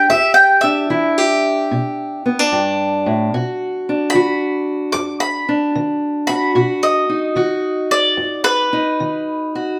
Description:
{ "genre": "acoustic country blues, solo or duo", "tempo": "74 BPM", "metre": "4/4", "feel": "swing 67% on 8ths", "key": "unclear", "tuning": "A4 = 440 Hz", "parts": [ { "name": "mandolin", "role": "melody", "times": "0.0-9.8 s", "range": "B4 to D6", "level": "-18 LUFS", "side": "equal", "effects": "none" }, { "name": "fingerpicked steel-string acoustic guitar", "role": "accompaniment", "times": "0.0-9.8 s", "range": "E2 to G4", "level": "-20 LUFS", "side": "equal", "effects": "none" } ], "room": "moderate studio reverb, RT60 0.6 s", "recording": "none", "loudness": "-17 LUFS", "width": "mono", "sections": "0.0-9.8 A section", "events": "none", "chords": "0.0 Em7; 3.3 B", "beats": "| 0.08 0.89 1.69 2.50 | 3.31 4.12 4.93 5.74 | 6.55 7.37 8.18 8.99" }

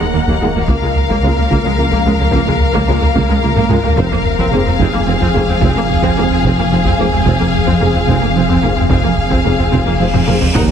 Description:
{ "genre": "cinematic, hybrid orchestral and electronic film score", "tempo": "73 BPM (dotted quarters)", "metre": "6/8", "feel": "straight", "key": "F phrygian", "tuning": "A4 = 439 Hz", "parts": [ { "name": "rich studio violin section", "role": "melody", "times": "0.0-10.6 s", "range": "F5 to Gb5", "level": "-21 LUFS", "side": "left 5 dB", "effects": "none" }, { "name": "warm symphonic violin section", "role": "second line", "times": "0.0-10.6 s", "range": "Ab4 to Bb4", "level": "-21 LUFS", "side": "left 4 dB", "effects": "none" }, { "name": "warm symphonic viola section", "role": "accompaniment", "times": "0.0-10.6 s", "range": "Ab3 to Eb4", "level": "-22 LUFS", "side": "equal", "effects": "none" }, { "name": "glassy FM pad", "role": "sustained chords", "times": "0.0-10.7 s", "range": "F3 to F5", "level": "-22 LUFS", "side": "equal", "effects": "ensemble chorus, built-in reverb, phaser" }, { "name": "resonant blip pluck", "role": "arpeggios", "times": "0.0-10.7 s", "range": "Eb3 to Bb4", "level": "-25 LUFS", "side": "equal", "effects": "none" }, { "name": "rubbery square bass", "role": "riff", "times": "0.0-10.7 s", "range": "Db2 to F3", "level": "-21 LUFS", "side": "right 2 dB", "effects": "none" }, { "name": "warm sub bass", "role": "bass", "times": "0.0-10.7 s", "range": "Eb1 to Db2", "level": "-22 LUFS", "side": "equal", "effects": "none" }, { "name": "warm symphonic cello section", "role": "bass", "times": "0.0-10.7 s", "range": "Db2 to F2", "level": "-21 LUFS", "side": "right 3 dB", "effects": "none" }, { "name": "dark tuba", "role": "bass", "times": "0.1-10.7 s", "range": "F1 to Eb2", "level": "-22 LUFS", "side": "right 4 dB", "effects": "none" }, { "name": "warm symphonic double bass section", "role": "bass", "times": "0.1-10.7 s", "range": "F1 to Eb2", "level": "-22 LUFS", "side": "right 3 dB", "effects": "none" }, { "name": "taiko ensemble", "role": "drums", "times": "0.3-10.7 s", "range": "none", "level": "-20 LUFS", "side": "equal", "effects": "none" }, { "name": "mellow French horn section", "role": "sustained chords", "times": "0.4-10.7 s", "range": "Bb3 to Ab4", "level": "-25 LUFS", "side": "left 4 dB", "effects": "none" }, { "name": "cymbal swell and impact", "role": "sound effects", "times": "9.9-10.7 s", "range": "none", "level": "-21 LUFS", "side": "equal", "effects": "none" } ], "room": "moderate scoring stage reverb, RT60 1.8 s", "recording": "heavily compressed radio sound, multiband compression", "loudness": "-11 LUFS", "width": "side -8 dB against mid", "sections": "0.0-10.6 A section", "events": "drum fill 3.6-4.0, 10.1-10.6; cymbal swell 9.9-10.6; impact 10.6", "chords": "0.0 Ebm; 0.7 Bbm/Db; 4.0 Fm", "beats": "| 0.69 1.51 | 2.33 3.15 | 3.98 4.80 | 5.62 6.44 | 7.26 8.09 | 8.91 9.73 | 10.55" }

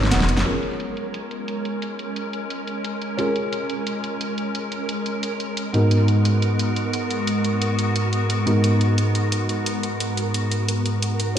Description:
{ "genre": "liquid drum and bass", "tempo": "176 BPM", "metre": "4/4", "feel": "straight", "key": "G# dorian", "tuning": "A4 = 440 Hz", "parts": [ { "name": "felt-muted upright piano", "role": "accompaniment", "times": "0.0-11.4 s", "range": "G#2 to C#5", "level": "-23 LUFS", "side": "equal", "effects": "ping-pong delay" }, { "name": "glassy FM pad", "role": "sustained chords", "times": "0.0-11.3 s", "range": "F#3 to A#4", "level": "-25 LUFS", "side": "equal", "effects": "ensemble chorus, built-in reverb" }, { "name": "crunchy breakbeat drum kit", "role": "drums", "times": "0.0-0.5 s", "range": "ride cymbal, snare drum", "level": "-33 LUFS", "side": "right 1 dB", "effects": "none" }, { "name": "pop drum kit", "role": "drums", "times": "0.0-11.4 s", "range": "hi-hat, snare drum", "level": "-28 LUFS", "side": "equal", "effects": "low-pass filter on hats, low-pass filter on snare" } ], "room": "moderate concert hall reverb, RT60 1.8 s, small room ambience", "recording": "played on a big sound system in a bare room, large studio reverb", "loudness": "-20 LUFS", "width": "side -9 dB against mid", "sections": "0.5-11.4 A section", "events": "drum fill 0.0-0.5; band accent 0.4; filter sweep on drum 0.5-11.4", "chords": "0.5 A#m7; 5.7 G#m9", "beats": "0.12 | 0.46 0.80 1.14 1.48 | 1.82 2.16 2.50 2.84 | 3.19 3.53 3.87 4.21 | 4.55 4.89 5.23 5.57 | 5.91 6.25 6.59 6.93 | 7.28 7.62 7.96 8.30 | 8.64 8.98 9.32 9.66 | 10.00 10.34 10.69 11.03 | 11.37" }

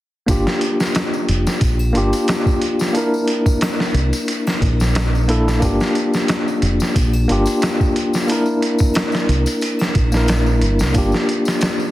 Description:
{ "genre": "trip hop", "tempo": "90 BPM", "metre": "4/4", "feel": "swing 54% on 16ths", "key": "G dorian", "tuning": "A4 = 440 Hz", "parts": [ { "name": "bright tine electric piano", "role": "accompaniment", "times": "0.3-11.9 s", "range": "Bb3 to Bb4", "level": "-19 LUFS", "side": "left 1 dB", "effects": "tremolo, tape echo" }, { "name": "deep dub fingered electric bass", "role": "bass", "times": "0.3-11.1 s", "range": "F1 to C2", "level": "-17 LUFS", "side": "equal", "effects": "tube saturation" }, { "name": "boom bap sampler-style drum kit", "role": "drums", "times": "0.3-11.8 s", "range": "hi-hat, kick drum, snare drum", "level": "-20 LUFS", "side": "equal", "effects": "none" }, { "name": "tambourine and triangle", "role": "percussion", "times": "0.3-11.9 s", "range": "none", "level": "-33 LUFS", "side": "left 4 dB", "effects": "none" } ], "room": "light reverb", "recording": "heavily compressed radio sound", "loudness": "-15 LUFS", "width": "side -15 dB against mid", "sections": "0.3-11.9 A section", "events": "none", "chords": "0.3 Gm7; 3.0 C9 (rootless); 5.6 Gm7; 8.3 C9 (rootless); 10.9 Gm7", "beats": "| 0.28 0.95 1.62 2.28 | 2.95 3.62 4.28 4.95 | 5.62 6.28 6.95 7.62 | 8.28 8.95 9.62 10.28 | 10.95 11.62" }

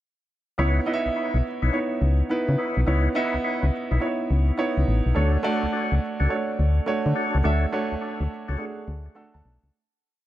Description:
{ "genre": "R&B", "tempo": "105 BPM", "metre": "4/4", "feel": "swing 64% on 16ths", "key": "C# phrygian", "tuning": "A4 = 440 Hz", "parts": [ { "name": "warm concert grand piano", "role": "accompaniment", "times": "0.6-9.8 s", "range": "A3 to A5", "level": "-26 LUFS", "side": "right 2 dB", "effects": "none" }, { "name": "percussive tonewheel organ", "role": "stabs", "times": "0.6-8.7 s", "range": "D4 to C#5", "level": "-30 LUFS", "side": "left 3 dB", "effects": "overdrive, chorus vibrato, slow rotary speaker, digital delay" }, { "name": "solid FM bass", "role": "bass", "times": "0.6-9.7 s", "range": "A1 to D3", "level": "-21 LUFS", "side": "left 1 dB", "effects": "none" } ], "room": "studio ambience", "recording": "none", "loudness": "-21 LUFS", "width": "side -14 dB against mid", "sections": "0.6-9.7 verse", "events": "fade-out 7.4-9.7; grand piano fill 8.9-9.7", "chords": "0.6 C#m9; 5.2 Dmaj7", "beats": "| 0.59 1.16 1.73 2.30 | 2.87 3.44 4.01 4.59 | 5.16 5.73 6.30 6.87 | 7.44 8.02 8.59 9.16" }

